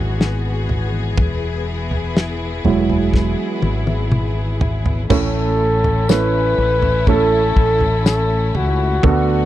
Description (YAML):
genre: pop ballad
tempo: 61 BPM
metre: 4/4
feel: straight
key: A major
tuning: A4 = 444 Hz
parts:
  - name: warm baby grand piano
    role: accompaniment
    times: 0.0-9.5 s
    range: A2 to A4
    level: -21 LUFS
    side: right 6 dB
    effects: none
  - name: warm studio string section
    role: sustained chords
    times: 0.0-9.5 s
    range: D3 to G#4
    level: -26 LUFS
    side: left 4 dB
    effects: none
  - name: mellow fretless electric bass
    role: bass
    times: 0.0-9.5 s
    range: E1 to D2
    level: -20 LUFS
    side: left 1 dB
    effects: none
  - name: damped 70s drum kit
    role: drums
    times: 0.2-9.3 s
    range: crash cymbal, kick drum, snare drum, toms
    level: -19 LUFS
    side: equal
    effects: none
  - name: breathy flugelhorn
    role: melody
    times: 5.1-9.5 s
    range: F#4 to B4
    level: -19 LUFS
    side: left 1 dB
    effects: none
  - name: tambourine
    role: percussion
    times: 6.1-8.3 s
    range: none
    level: -30 LUFS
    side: left 23 dB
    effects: none
room: little or no reverb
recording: dry, close 1970s-style studio recording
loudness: -15 LUFS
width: side -13 dB against mid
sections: 0.0-5.1 A section; 5.1-9.5 B section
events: grand piano solo 0.0-5.1; drum fill 3.1-5.1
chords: 0.0 Eadd9; 5.1 A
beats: 0.21 | 1.19 2.16 3.14 4.12 | 5.11 6.09 7.08 8.06 | 9.04